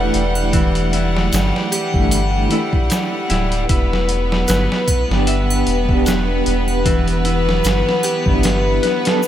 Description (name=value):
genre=trip hop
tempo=76 BPM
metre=4/4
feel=swing 56% on 16ths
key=unclear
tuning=A4 = 439 Hz
part: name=mellow electric guitar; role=accompaniment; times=0.0-9.2 s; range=E3 to A4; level=-23 LUFS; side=right 1 dB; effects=tremolo, tape echo
part: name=bright chamber violin section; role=sustained chords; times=0.0-9.3 s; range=G3 to F#5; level=-21 LUFS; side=left 1 dB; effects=none
part: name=Celtic harp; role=arpeggios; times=0.0-9.3 s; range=E3 to E5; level=-24 LUFS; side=equal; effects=vintage 12-bit sampler grit, tape echo
part: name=soft dub sub bass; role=bass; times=0.0-8.8 s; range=D1 to G1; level=-20 LUFS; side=equal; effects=tube saturation
part: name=trip hop sampler-style drum kit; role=drums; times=0.1-9.2 s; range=hi-hat, kick drum, snare drum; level=-20 LUFS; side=equal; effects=none
part: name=triangle and tube shaker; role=percussion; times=0.4-9.3 s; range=none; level=-29 LUFS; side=right 2 dB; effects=none
room=moderate huge ambient reverb, RT60 7.5 s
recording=dreamy mix soaked in reverb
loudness=-14 LUFS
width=side -11 dB against mid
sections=0.0-9.3 A section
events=none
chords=0.0 Asus4/E; 3.7 G/E